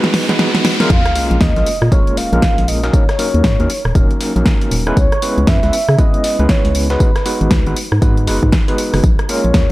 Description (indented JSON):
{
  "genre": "deep house",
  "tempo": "118 BPM",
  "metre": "4/4",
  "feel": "swing 61% on 16ths",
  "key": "Bb phrygian",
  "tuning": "A4 = 440 Hz",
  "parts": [
    { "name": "overdriven tine electric piano", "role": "stabs", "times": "0.0-9.7 s", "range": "Gb3 to Cb5", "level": "-20 LUFS", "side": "equal", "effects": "medium tremolo, sidechain pumping, tape echo" },
    { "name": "deep house drum kit", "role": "drums", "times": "0.0-9.7 s", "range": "hi-hat, rim click, snare drum", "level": "-19 LUFS", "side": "equal", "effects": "none" },
    { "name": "riser and sub drop", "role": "sound effects", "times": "0.0-2.9 s", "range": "none", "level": "-22 LUFS", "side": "equal", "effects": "none" },
    { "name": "mellow horn-like synth lead", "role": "melody", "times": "0.9-9.7 s", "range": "Cb5 to F5", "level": "-20 LUFS", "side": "right 1 dB", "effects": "chorus, tape echo" },
    { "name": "organ-like FM bass", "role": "bass", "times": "0.9-9.7 s", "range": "Eb1 to Db3", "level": "-16 LUFS", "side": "equal", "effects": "sidechain pumping" },
    { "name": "dusty soul sampler-style drum kit", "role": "drums", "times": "0.9-9.7 s", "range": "hi-hat, snare drum, tambourine", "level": "-31 LUFS", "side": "left 1 dB", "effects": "sidechain pumping on perc, high-pass filter on perc, high-pass filter on snare, sidechain pumping on hats, high-pass filter on hats, high-pass filter on room" },
    { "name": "electronic kick drum", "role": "drums", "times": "0.9-9.7 s", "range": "none", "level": "-14 LUFS", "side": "equal", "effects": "none" }
  ],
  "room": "light reverb, digital ambience",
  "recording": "none",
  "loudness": "-12 LUFS",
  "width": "side -18 dB against mid",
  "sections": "0.9-9.7 A section",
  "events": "drum fill 0.0-0.9; riser 0.0-0.9; drop 0.9-9.7; impact 0.9-2.9",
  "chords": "0.0 Abm7; 0.9 Bbm7; 2.9 Ebm7; 5.0 Dbm7; 7.0 Abm7; 9.0 Bbm7"
}